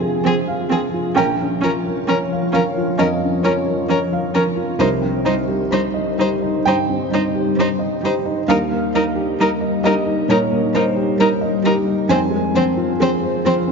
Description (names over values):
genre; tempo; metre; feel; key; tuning
neoclassical piano and strings; 66 BPM; 4/4; rubato; F minor; A4 = 440 Hz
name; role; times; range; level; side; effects
felt-muted upright piano; accompaniment; 0.0-13.7 s; Bb1 to Ab5; -20 LUFS; right 1 dB; none
glassy FM pad; sustained chords; 0.0-13.7 s; F3 to Db5; -24 LUFS; left 2 dB; ensemble chorus, built-in reverb, phaser
dark cello; second line; 0.2-13.5 s; F3 to G3; -24 LUFS; right 3 dB; none
dark viola; accompaniment; 0.2-13.5 s; C4 to Eb4; -25 LUFS; right 2 dB; none
warm violin; melody; 0.3-13.5 s; Ab4 to C5; -23 LUFS; left 4 dB; none
room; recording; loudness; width
wet plate reverb, RT60 3.3 s; dreamy mix soaked in reverb, nothing above 7.5 kHz; -16 LUFS; side -5 dB against mid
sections
0.0-13.7 A section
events
none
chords
0.0 Fm; 1.2 Bbm; 4.8 Cm7; 8.5 Eb; 12.1 Fm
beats
0.25 | 1.17 2.08 2.99 3.90 | 4.80 5.71 6.66 7.58 | 8.49 9.40 10.29 11.20 | 12.10 13.01